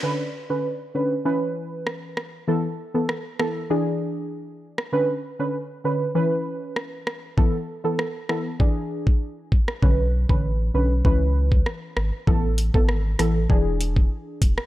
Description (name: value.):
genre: dancehall.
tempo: 98 BPM.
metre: 4/4.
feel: straight.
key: B dorian.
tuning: A4 = 440 Hz.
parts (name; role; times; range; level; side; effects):
deep mellow chord stab; accompaniment; 0.0-14.6 s; D3 to B4; -25 LUFS; equal; chorus.
island pop drum kit; drums; 1.9-14.7 s; hi-hat, kick drum, rim click; -22 LUFS; equal; none.
warm sub bass; bass; 9.8-14.6 s; E1 to C#2; -22 LUFS; equal; none.
room: digital ambience.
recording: dry, gritty hardware recording.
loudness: -21 LUFS.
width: side -15 dB against mid.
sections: 0.0-14.7 A section.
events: none.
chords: 0.0 Bmadd9; 1.3 C#m7; 2.5 Asus2; 3.7 E7; 4.9 Bmadd9; 6.2 C#m7; 7.4 Asus2; 8.6 E7; 9.8 Bmadd9; 11.1 C#m7; 12.3 Asus2; 13.5 E7.